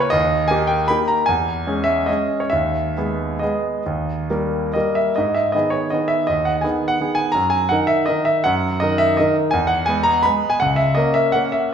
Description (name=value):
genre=classical, piano waltz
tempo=131-180 BPM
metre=3/4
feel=rubato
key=G# minor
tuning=A4 = 440 Hz
part: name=clear concert grand piano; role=solo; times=0.0-11.7 s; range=C#2 to B5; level=-16 LUFS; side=equal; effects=none
room=wet recital hall reverb, RT60 1.4 s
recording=recorded in a church or concert hall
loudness=-16 LUFS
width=side -8 dB against mid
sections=0.0-5.2 A section; 5.2-11.7 B section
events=none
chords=0.1 D#; 1.3 C#m/E; 2.5 G#m/D#; 3.9 D#; 5.2 G#m; 7.4 D#m/F#; 9.5 E; 10.6 C#m69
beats=| 0.12 0.49 0.89 | 1.28 1.66 2.08 | 2.52 2.96 3.42 | 3.86 4.30 4.75 | 5.17 5.54 5.92 | 6.29 6.64 7.00 | 7.35 7.71 8.09 | 8.45 8.81 9.17 | 9.52 9.87 10.24 | 10.60 10.97 11.35